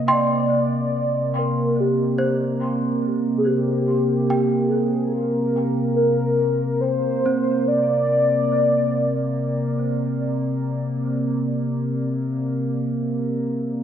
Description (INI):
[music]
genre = ambient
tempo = free time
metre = none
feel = none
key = unclear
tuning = A4 = 442 Hz
[part]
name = warm velvety synth lead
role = melody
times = 0.0-9.8 s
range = G4 to Eb5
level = -22 LUFS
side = left 1 dB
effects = chorus, diffuse ambient delay
[part]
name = worn celesta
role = arpeggios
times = 0.0-10.2 s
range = C4 to C6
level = -28 LUFS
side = right 1 dB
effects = diffuse ambient delay
[part]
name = analog drone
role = drone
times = 0.0-13.8 s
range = C3 to Bb3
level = -22 LUFS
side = equal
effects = chorus
[sound]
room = wet concert hall reverb, RT60 2.3 s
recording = none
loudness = -19 LUFS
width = side -9 dB against mid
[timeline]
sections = 0.0-13.8 A section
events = fade-out on celesta 0.0-13.8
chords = 0.0 Cm9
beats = free time